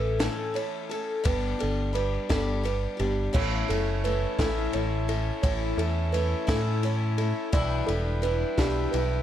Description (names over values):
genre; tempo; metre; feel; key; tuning
indie folk with a building arrangement; 57 BPM (dotted quarters); 6/8; straight; unclear; A4 = 440 Hz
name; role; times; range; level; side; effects
picked steel-string acoustic guitar; accompaniment; 0.0-9.2 s; G2 to A4; -31 LUFS; left 6 dB; none
small celesta; arpeggios; 0.0-9.2 s; G4 to D5; -32 LUFS; right 5 dB; slapback echo
deep dub picked electric bass; bass; 0.0-9.2 s; E1 to A2; -28 LUFS; equal; none
compact cocktail drum kit; drums; 0.2-9.1 s; crash cymbal, kick drum, ride cymbal, snare drum; -32 LUFS; equal; none
pedal harmonium; sustained chords; 3.3-9.2 s; E4 to A5; -36 LUFS; right 3 dB; none
room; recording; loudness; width
light reverb, small room reverb; dark, warm production; -24 LUFS; side -11 dB against mid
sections
0.0-3.4 A section; 3.4-9.2 B section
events
none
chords
0.0 A; 1.3 G; 3.4 A; 7.5 G6